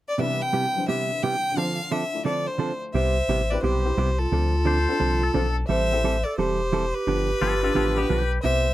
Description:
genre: country, western swing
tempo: 174 BPM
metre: 4/4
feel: swing 65% on 8ths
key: C major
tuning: A4 = 438 Hz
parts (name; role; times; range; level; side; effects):
- clear fiddle; melody; 0.1-8.7 s; A4 to G5; -27 LUFS; left 1 dB; none
- hollow-body jazz guitar; accompaniment; 0.2-8.7 s; C3 to A4; -26 LUFS; right 4 dB; none
- honky-tonk upright piano; accompaniment; 0.2-8.1 s; C2 to D5; -32 LUFS; left 4 dB; none
- breathy clarinet; second line; 2.9-8.7 s; F4 to C5; -28 LUFS; right 2 dB; none
- pure sine sub bass; bass; 2.9-8.7 s; E1 to D2; -25 LUFS; left 1 dB; none
- pedal steel guitar; second line; 4.7-8.4 s; B3 to C5; -29 LUFS; left 5 dB; none
room: little or no reverb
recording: none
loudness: -21 LUFS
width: side -15 dB against mid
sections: 0.2-2.9 A section; 2.9-8.7 B section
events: none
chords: 0.2 Cmaj7; 1.6 Dm7; 2.9 Cmaj7; 4.3 Dm7; 5.7 Am7; 7.1 G7

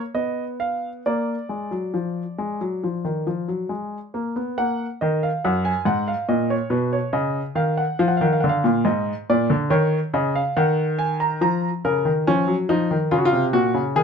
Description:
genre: classical, baroque-style two-part invention for grand piano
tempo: 70 BPM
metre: 4/4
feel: straight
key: Eb minor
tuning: A4 = 439 Hz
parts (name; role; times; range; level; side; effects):
- warm baby grand piano; solo; 0.1-14.0 s; Gb2 to Bb5; -20 LUFS; equal; none
room: light reverb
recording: minimal, uncompressed stereo recording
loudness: -20 LUFS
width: side -6 dB against mid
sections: 0.0-4.6 A section; 4.6-14.0 B section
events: none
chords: 0.0 F7(b5, no3); 1.1 Bb; 4.6 Ebm; 6.3 Gb/Bb; 8.0 Bb7; 9.7 Ebm; 11.4 Bbm; 13.1 Db

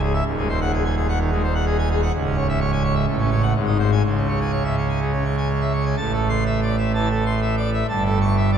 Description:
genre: classical, organ toccata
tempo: 127 BPM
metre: 4/4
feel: straight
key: C# minor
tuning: A4 = 438 Hz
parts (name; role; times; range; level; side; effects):
- pipe organ, full organ; solo; 0.0-8.6 s; C#1 to C#6; -18 LUFS; right 1 dB; none
room: wet cathedral reverb, RT60 4.7 s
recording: dark, warm production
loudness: -19 LUFS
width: side -8 dB against mid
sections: 0.0-6.0 A section; 6.0-8.6 B section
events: none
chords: 0.3 G#7/D#; 2.1 C#m; 3.1 F#m/A; 3.6 G#; 4.0 C#m; 6.0 Am; 7.9 A7/G

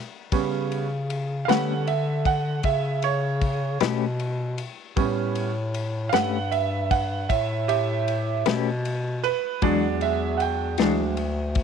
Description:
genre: slow blues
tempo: 52 BPM (dotted quarters)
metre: 12/8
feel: straight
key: unclear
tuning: A4 = 441 Hz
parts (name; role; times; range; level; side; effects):
- breathy bass clarinet; bass; 0.0-11.6 s; D2 to D3; -27 LUFS; left 2 dB; none
- bright concert grand piano; accompaniment; 0.3-11.6 s; F#3 to G5; -25 LUFS; right 13 dB; none
- warm soul drum kit; drums; 0.3-11.6 s; kick drum, ride cymbal, snare drum; -30 LUFS; left 4 dB; none
- semi-hollow electric guitar; accompaniment; 1.5-11.0 s; E3 to B4; -26 LUFS; left 15 dB; tremolo
room: little or no reverb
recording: 1960s-style stereo with parts hard left and right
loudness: -22 LUFS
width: side -7 dB against mid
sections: 0.0-11.6 A section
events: grand piano solo 0.0-11.6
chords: 0.0 A9; 9.6 E9

